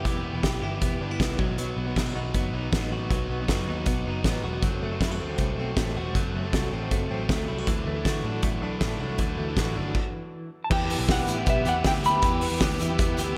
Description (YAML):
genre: jangly indie pop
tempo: 158 BPM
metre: 4/4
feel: straight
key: E minor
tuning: A4 = 440 Hz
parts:
  - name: biting overdriven guitar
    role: accompaniment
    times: 0.0-13.4 s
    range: B2 to A4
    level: -36 LUFS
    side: equal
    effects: none
  - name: direct-recorded clean electric guitar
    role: arpeggios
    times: 0.0-13.4 s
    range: E3 to G4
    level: -35 LUFS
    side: equal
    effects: tremolo, slapback echo
  - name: vintage muted picked electric bass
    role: bass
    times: 0.0-13.3 s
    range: E1 to D3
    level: -34 LUFS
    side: equal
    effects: none
  - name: loose indie drum kit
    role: drums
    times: 0.1-13.3 s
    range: crash cymbal, hi-hat, kick drum, snare drum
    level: -30 LUFS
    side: equal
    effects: none
  - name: semi-hollow electric guitar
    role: melody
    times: 10.6-13.1 s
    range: E5 to B5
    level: -28 LUFS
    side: equal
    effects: digital delay
  - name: warm upright piano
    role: accompaniment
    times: 10.7-13.4 s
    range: B3 to B4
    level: -38 LUFS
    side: equal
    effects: none
  - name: warm analog pad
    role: sustained chords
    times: 10.7-13.4 s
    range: G4 to E6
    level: -41 LUFS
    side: equal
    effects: none
room: moderate lush hall reverb, RT60 1.9 s, small room reverb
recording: big arena sound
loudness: -26 LUFS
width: mono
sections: 0.0-10.7 A section; 10.7-13.4 B section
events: stop 10.0-10.7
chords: 0.0 Em; 1.4 B; 4.6 F#dim; 7.7 Dadd9; 10.7 Em